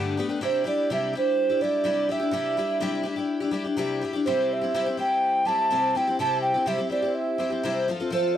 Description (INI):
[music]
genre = rock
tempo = 125 BPM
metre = 4/4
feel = straight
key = unclear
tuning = A4 = 441 Hz
[part]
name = picked twelve-string acoustic guitar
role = accompaniment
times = 0.0-8.4 s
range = G2 to A4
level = -26 LUFS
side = left 3 dB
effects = none
[part]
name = mellow hollow alto ocarina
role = melody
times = 0.4-8.4 s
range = C5 to A5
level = -24 LUFS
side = right 3 dB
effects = none
[sound]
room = light reverb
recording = dry, close 1970s-style studio recording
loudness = -23 LUFS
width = side -10 dB against mid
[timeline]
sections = 0.0-4.3 A section; 4.3-8.4 B section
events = none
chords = 0.4 Cadd9; 4.3 C